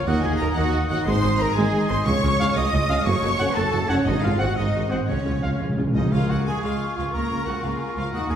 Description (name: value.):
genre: cinematic.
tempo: 120 BPM (dotted quarters).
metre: 6/8.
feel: straight.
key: Db major.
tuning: A4 = 440 Hz.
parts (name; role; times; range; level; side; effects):
rich symphonic violin section; melody; 0.0-8.4 s; C5 to Eb6; -33 LUFS; left 3 dB; none.
warm symphonic violin section; second line; 0.0-8.4 s; Gb4 to Eb6; -33 LUFS; left 2 dB; none.
clear symphonic viola section; accompaniment; 0.0-8.4 s; Eb3 to Gb4; -30 LUFS; right 1 dB; none.
dark French horn section; sustained chords; 0.0-8.4 s; Ab3 to F4; -31 LUFS; left 1 dB; none.
clear trumpet; stabs; 0.0-8.4 s; Eb4 to Gb5; -32 LUFS; equal; none.
warm oboe; second line; 0.1-8.4 s; Ab4 to Eb6; -31 LUFS; right 1 dB; none.
dark tuba; bass; 0.1-6.0 s; Gb1 to Eb2; -27 LUFS; right 2 dB; none.
rich symphonic double bass section; bass; 0.1-8.4 s; Gb1 to Eb2; -27 LUFS; right 1 dB; none.
warm symphonic cello section; bass; 0.1-8.4 s; Db2 to Eb5; -28 LUFS; right 2 dB; none.
timpani; percussion; 2.1-6.1 s; Ab2 to Db3; -27 LUFS; equal; none.
hollow concert flute; second line; 6.1-8.4 s; Db6 to Eb6; -32 LUFS; left 1 dB; none.
room: wet scoring stage reverb, RT60 1.6 s.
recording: heard from further back in the room.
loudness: -20 LUFS.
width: side -9 dB against mid.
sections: 0.0-6.1 A section; 6.1-8.4 B section.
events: timpani fill 5.1-6.1.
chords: 0.1 Ebm; 1.1 Ab; 2.1 Db; 3.1 Gbm; 4.1 Ab7; 5.1 Db; 7.1 Bbm/Db.